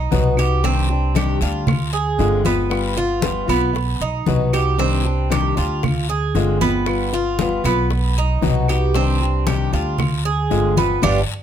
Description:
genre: latin, Cuban son and guajira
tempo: 116 BPM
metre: 4/4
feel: straight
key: C harmonic minor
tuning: A4 = 440 Hz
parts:
  - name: Cuban tres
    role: arpeggios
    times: 0.0-11.2 s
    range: B3 to Ab4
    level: -23 LUFS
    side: right 7 dB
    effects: none
  - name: upright bass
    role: bass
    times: 0.0-11.2 s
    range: G1 to D2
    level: -20 LUFS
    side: right 1 dB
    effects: none
  - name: fingerpicked acoustic archtop guitar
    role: accompaniment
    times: 0.1-11.2 s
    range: B2 to G4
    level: -22 LUFS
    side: left 7 dB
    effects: none
  - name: bongos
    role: percussion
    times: 0.1-11.1 s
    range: none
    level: -29 LUFS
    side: left 10 dB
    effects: none
  - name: congas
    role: percussion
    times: 0.1-11.2 s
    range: none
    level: -24 LUFS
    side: left 2 dB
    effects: none
  - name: guiro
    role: percussion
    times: 0.1-11.2 s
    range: none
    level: -34 LUFS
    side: left 6 dB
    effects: none
  - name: claves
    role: percussion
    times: 0.4-11.2 s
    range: none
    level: -33 LUFS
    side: right 5 dB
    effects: none
room: light reverb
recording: close, detailed microphones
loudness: -16 LUFS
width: side -9 dB against mid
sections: 0.0-11.4 A section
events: band accent 11.0-11.4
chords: 0.0 B; 0.6 Cmadd9; 1.7 Dm7b5; 2.7 G7; 3.8 B; 4.8 Cmadd9; 5.8 Dm7b5; 6.9 G7; 7.9 B; 8.9 Cmadd9; 10.0 Dm7b5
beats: 0.12 | 0.64 1.16 1.68 2.20 | 2.71 3.23 3.75 4.27 | 4.79 5.31 5.83 6.35 | 6.87 7.39 7.91 8.43 | 8.95 9.47 9.99 10.51 | 11.03

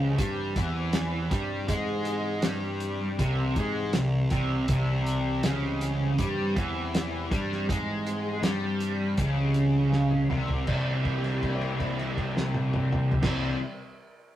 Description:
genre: psychedelic rock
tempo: 80 BPM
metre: 4/4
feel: straight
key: unclear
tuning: A4 = 440 Hz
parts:
  - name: string machine, cellos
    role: sustained chords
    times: 0.0-13.5 s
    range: E3 to C5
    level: -39 LUFS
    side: equal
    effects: ensemble chorus
  - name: cranked stack guitar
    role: riff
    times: 0.0-13.6 s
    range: C3 to E4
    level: -28 LUFS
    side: equal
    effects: overdrive, rotary speaker
  - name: fuzz picked electric bass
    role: bass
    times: 0.0-13.5 s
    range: C2 to Ab2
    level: -30 LUFS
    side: equal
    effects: overdrive
  - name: cloth-damped thuddy drum kit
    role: drums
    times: 0.2-13.4 s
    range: crash cymbal, hi-hat, kick drum, snare drum, toms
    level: -30 LUFS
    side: right 1 dB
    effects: none
room: moderate stone room reverb, RT60 1.0 s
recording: rough rehearsal-room recording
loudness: -25 LUFS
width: side -12 dB against mid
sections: 0.0-10.7 A section; 10.7-13.7 B section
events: drum fill 9.9-10.7; held note 10.7-13.2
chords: 0.0 C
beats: 0.19 0.94 | 1.69 2.44 3.19 3.94 | 4.69 5.44 6.19 6.94 | 7.69 8.44 9.19 9.94 | 10.68 11.43 12.18 12.93

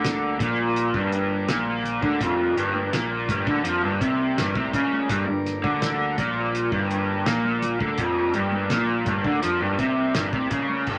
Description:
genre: psychedelic rock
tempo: 83 BPM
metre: 4/4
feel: straight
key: G minor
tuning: A4 = 440 Hz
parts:
  - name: overdriven combo organ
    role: sustained chords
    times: 0.0-11.0 s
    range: G3 to D5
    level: -36 LUFS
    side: equal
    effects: none
  - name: raw garage guitar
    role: riff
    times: 0.0-11.0 s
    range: F2 to F3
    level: -25 LUFS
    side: equal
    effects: overdrive, rotary speaker
  - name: fuzz picked electric bass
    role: bass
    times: 0.0-11.0 s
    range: F1 to F2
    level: -35 LUFS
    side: equal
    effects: overdrive
  - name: cloth-damped thuddy drum kit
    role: drums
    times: 0.0-11.0 s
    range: crash cymbal, hi-hat, kick drum, snare drum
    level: -32 LUFS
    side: equal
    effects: none
  - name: congas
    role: percussion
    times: 0.4-10.9 s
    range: none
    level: -39 LUFS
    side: equal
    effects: none
room: wet club reverb, RT60 0.8 s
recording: none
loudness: -24 LUFS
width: mono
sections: 0.0-10.9 A section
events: none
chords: 0.0 Gm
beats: 0.04 0.76 1.48 | 2.21 2.93 3.65 4.37 | 5.09 5.81 6.54 7.26 | 7.98 8.70 9.42 10.15 | 10.87

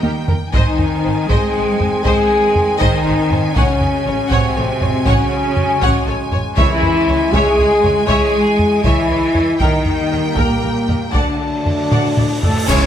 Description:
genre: cinematic, epic orchestral film score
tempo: 79 BPM (dotted quarters)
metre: 12/8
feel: straight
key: C# harmonic minor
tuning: A4 = 440 Hz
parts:
  - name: rich symphonic violin section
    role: melody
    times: 0.0-12.9 s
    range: A4 to A5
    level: -26 LUFS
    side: left 1 dB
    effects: none
  - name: warm symphonic violin section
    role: second line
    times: 0.0-12.9 s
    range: G4 to G#5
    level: -27 LUFS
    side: left 1 dB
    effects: none
  - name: warm symphonic viola section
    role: accompaniment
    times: 0.0-12.9 s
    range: G#3 to D5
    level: -24 LUFS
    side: equal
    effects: none
  - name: mellow French horn section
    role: sustained chords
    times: 0.0-12.9 s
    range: A3 to G#4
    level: -18 LUFS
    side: left 2 dB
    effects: none
  - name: warm trombone section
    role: sustained chords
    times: 0.0-12.9 s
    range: D#3 to B#3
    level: -26 LUFS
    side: right 5 dB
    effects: none
  - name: rich symphonic cello section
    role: bass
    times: 0.0-12.9 s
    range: A2 to G#3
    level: -21 LUFS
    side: right 1 dB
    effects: none
  - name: rich symphonic double bass section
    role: bass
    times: 0.0-12.9 s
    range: G#1 to D#2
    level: -22 LUFS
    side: right 2 dB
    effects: none
  - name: solo taiko drums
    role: drums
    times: 0.0-12.9 s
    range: none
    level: -19 LUFS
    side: equal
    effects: none
  - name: timpani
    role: percussion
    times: 6.6-7.3 s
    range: C#3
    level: -26 LUFS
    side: equal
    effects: none
  - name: cymbal swell, clash cymbals and concert bass drum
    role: percussion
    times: 9.6-12.9 s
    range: none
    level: -26 LUFS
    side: equal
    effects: none
  - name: cymbal swell and impact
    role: sound effects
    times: 11.4-12.9 s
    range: none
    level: -28 LUFS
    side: right 1 dB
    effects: none
  - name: silver concert flute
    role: second line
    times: 12.4-12.9 s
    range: A4 to C#5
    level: -26 LUFS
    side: equal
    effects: none
  - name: bright trumpet section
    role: stabs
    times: 12.4-12.9 s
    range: A4 to C#5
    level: -23 LUFS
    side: right 2 dB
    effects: none
room: moderate scoring stage reverb, RT60 1.6 s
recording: none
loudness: -13 LUFS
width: side -10 dB against mid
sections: 0.0-12.7 A section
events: drum fill 0.0-0.5, 11.9-12.7; cymbal swell 11.4-12.7; band accent 12.7; impact 12.7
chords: 0.0 D#; 0.5 G#; 3.6 F#madd9/A; 6.6 C#m; 9.6 D#; 11.1 D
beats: | 0.54 1.30 2.06 2.81 | 3.56 4.31 5.07 5.82 | 6.57 7.33 8.09 8.85 | 9.61 10.37 11.15 11.92 | 12.69

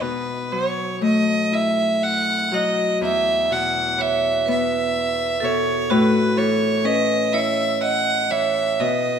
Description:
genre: celtic folk, Celtic slow air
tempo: 41 BPM (dotted quarters)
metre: 6/8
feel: rubato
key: unclear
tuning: A4 = 440 Hz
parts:
  - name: rich fiddle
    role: melody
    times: 0.0-9.2 s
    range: B4 to F#5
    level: -21 LUFS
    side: right 1 dB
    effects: none
  - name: Celtic harp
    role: accompaniment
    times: 0.0-9.2 s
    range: E2 to G#5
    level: -23 LUFS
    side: left 3 dB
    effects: none
  - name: vibraphone with hard mallets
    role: second line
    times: 4.0-9.2 s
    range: F#4 to D#5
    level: -23 LUFS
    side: right 7 dB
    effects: none
room: moderate scoring stage reverb, RT60 2.0 s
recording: minimal, uncompressed stereo recording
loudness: -18 LUFS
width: side -7 dB against mid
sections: 0.0-9.2 A section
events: none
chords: 0.0 B7sus4; 3.0 E5; 5.9 A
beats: | 0.01 1.51 | 3.01 4.47 | 5.91 7.34 | 8.80

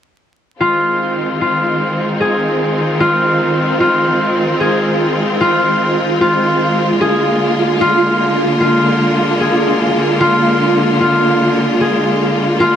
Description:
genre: trip hop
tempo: 75 BPM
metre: 4/4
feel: swing 54% on 16ths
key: F dorian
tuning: A4 = 439 Hz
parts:
  - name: bright studio string section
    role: sustained chords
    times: 0.6-12.8 s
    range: D3 to F4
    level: -15 LUFS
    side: left 1 dB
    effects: low-pass filter
  - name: concert harp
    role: arpeggios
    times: 0.6-12.8 s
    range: F4 to Ab4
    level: -15 LUFS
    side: equal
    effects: vintage 12-bit sampler grit, low-pass filter, ping-pong delay
  - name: flickering grainy texture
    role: texture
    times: 1.2-12.8 s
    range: F4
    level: -21 LUFS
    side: right 3 dB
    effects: built-in reverb
room: moderate spring reverb, RT60 1.1 s, small room ambience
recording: vinyl crackle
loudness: -12 LUFS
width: side -9 dB against mid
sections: 0.6-12.8 A section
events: none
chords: 0.6 Fm7; 7.0 Bb7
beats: | 0.60 1.40 2.20 3.00 | 3.80 4.60 5.40 6.20 | 7.00 7.80 8.60 9.40 | 10.20 11.00 11.80 12.60

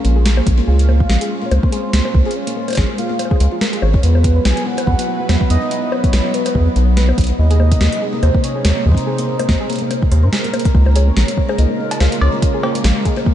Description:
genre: IDM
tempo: 143 BPM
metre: 4/4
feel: swing 56% on 16ths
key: unclear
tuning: A4 = 440 Hz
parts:
  - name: warm velvety synth lead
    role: melody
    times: 0.0-13.1 s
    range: B4 to Ab5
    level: -24 LUFS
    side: equal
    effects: chorus, tremolo, ping-pong delay
  - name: phased analog pad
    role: sustained chords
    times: 0.0-13.3 s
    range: C3 to B4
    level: -24 LUFS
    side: equal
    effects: phaser, chorus
  - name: soft round pluck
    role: arpeggios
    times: 0.0-13.3 s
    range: Bb3 to C5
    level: -23 LUFS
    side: left 1 dB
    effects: chorus, cassette tape, analog delay
  - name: round analog bass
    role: bass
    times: 0.0-12.9 s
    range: Ab1 to G2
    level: -12 LUFS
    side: equal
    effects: none
  - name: booming analog drum machine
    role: drums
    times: 0.0-13.2 s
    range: bongos, cowbell, hi-hat, snare drum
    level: -22 LUFS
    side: left 1 dB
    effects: none
  - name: electronic kick drum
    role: drums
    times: 0.5-13.3 s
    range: none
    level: -16 LUFS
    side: equal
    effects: none
room: light reverb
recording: nothing above 10.7 kHz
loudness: -13 LUFS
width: side -11 dB against mid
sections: 0.0-10.7 A section; 10.7-13.3 B section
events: drum fill 10.5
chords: 0.0 Db6; 4.0 Esus2; 7.4 Abadd9/Eb; 10.7 Db6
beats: 0.26 | 0.68 1.10 1.52 1.94 | 2.35 2.77 3.19 3.61 | 4.03 4.45 4.87 5.29 | 5.71 6.13 6.55 6.97 | 7.39 7.81 8.23 8.65 | 9.07 9.49 9.91 10.33 | 10.75 11.17 11.59 12.01 | 12.43 12.84 13.26

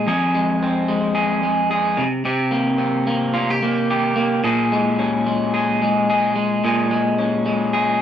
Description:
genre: indie pop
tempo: 110 BPM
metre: 4/4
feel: swing 55% on 16ths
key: Bb dorian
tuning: A4 = 440 Hz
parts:
  - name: electric guitar through a small old amp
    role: solo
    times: 0.0-8.0 s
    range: F2 to Ab4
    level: -17 LUFS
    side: equal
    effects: wide subtle chorus, vibrato effect
room: wet studio reverb, RT60 0.5 s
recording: dark, warm production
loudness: -17 LUFS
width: side -9 dB against mid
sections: 0.1-8.0 A section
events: none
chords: 0.1 Fm; 2.0 C5; 4.4 Bbm7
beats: | 0.08 0.62 1.17 1.71 | 2.26 2.81 3.35 3.90 | 4.44 4.99 5.54 6.08 | 6.63 7.17 7.72

